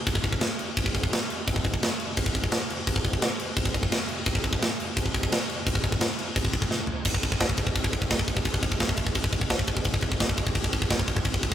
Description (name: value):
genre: metal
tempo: 172 BPM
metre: 4/4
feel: straight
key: none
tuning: none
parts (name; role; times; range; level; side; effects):
- tight metal drum kit; drums; 0.1-11.5 s; crash cymbal, kick drum, snare drum, toms; -24 LUFS; equal; none
room: light reverb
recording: rough rehearsal-room recording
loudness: -24 LUFS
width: side -10 dB against mid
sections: 0.0-7.1 A section; 7.1-11.5 B section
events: drum fill 6.7-7.1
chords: none